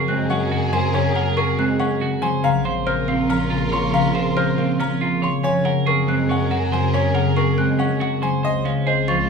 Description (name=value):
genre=classical, minimalist pattern music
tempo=280 BPM (eighths)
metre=7/8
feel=straight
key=unclear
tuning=A4 = 440 Hz
part: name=bright concert grand piano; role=melody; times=0.0-9.1 s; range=Bb4 to C6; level=-26 LUFS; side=left 4 dB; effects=none
part: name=concert harp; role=accompaniment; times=0.0-9.3 s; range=Db3 to Db4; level=-21 LUFS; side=left 1 dB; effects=none
part: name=warm studio violin section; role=sustained chords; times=0.0-9.3 s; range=F4 to C5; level=-30 LUFS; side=left 2 dB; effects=none
part: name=electric guitar at the edge of break-up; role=arpeggios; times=0.0-9.3 s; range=C4 to Db5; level=-24 LUFS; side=right 6 dB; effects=none
part: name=xylophone with rubber mallets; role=arpeggios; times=0.0-9.3 s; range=Eb5 to Gb6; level=-28 LUFS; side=left 2 dB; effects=none
part: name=warm studio double bass section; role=bass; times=0.0-9.3 s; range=Bb1 to Gb2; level=-27 LUFS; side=right 2 dB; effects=none
room=moderate large studio reverb, RT60 1.2 s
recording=minimal, uncompressed stereo recording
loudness=-17 LUFS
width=side -5 dB against mid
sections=0.0-8.4 A section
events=none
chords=0.0 Gbadd9; 2.4 Bbm; 5.4 Gbadd9; 8.4 Dbmaj7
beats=0.08 0.30 0.51 0.72 | 0.94 1.15 1.37 1.58 1.80 2.01 2.23 | 2.44 2.65 2.87 3.08 3.30 3.51 3.73 | 3.94 4.15 4.37 4.58 4.80 5.01 5.22 | 5.44 5.65 5.87 6.08 6.30 6.51 6.72 | 6.94 7.15 7.37 7.58 7.80 8.01 8.22 | 8.44 8.65 8.87 9.08